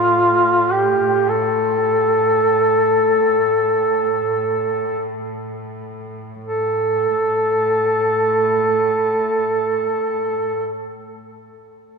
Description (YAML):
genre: caucasian folk, Caucasian lament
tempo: free time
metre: none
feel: none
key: unclear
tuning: A4 = 441 Hz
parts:
  - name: warm duduk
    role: melody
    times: 0.0-10.7 s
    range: F4 to A4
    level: -16 LUFS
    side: right 1 dB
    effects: none
  - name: dark chamber cello section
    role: drone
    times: 0.0-10.7 s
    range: A2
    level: -28 LUFS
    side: equal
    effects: none
room: wet cathedral reverb, RT60 4.3 s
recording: minimal, uncompressed stereo recording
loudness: -16 LUFS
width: side -4 dB against mid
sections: 0.0-6.4 A section; 6.4-12.0 B section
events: slowing down 0.0-6.4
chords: none